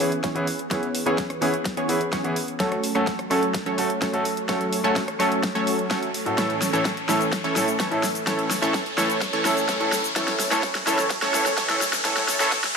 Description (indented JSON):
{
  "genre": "EDM, festival progressive house",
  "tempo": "127 BPM",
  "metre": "4/4",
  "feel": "straight",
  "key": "A major",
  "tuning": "A4 = 440 Hz",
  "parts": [
    { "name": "warm grand piano", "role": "accompaniment", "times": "0.0-12.5 s", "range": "A2 to A4", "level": "-26 LUFS", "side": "equal", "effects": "sidechain pumping, digital delay" },
    { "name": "lush unison pad", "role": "sustained chords", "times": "0.0-12.8 s", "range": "E3 to G#5", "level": "-34 LUFS", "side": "equal", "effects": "none" },
    { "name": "supersaw stab", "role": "riff", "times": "0.0-12.6 s", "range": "E3 to C#5", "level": "-25 LUFS", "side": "right 1 dB", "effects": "sidechain pumping, low-pass filter, digital delay" },
    { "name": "big-room dance drum kit", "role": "drums", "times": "0.0-12.7 s", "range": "hi-hat, rim click, shaker, snare drum", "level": "-28 LUFS", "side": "left 1 dB", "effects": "overdrive" },
    { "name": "riser", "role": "sound effects", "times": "2.5-12.8 s", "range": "none", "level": "-32 LUFS", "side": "left 1 dB", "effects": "none" },
    { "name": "electronic kick drum", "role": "drums", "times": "0.2-12.6 s", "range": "none", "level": "-31 LUFS", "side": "equal", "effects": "overdrive, high-pass filter on kick" }
  ],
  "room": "moderate digital room reverb, RT60 1.0 s, digital ambience",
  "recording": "high-pass filter",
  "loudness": "-21 LUFS",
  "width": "side -5 dB against mid",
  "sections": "0.0-12.8 A section",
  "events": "build-up 0.0-12.8; drum fill 0.0-12.8; filter sweep on supersaw synth 0.0-12.8; filter sweep 0.0-12.8; riser 2.5-12.8",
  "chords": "0.0 E6; 2.6 F#m; 6.4 A"
}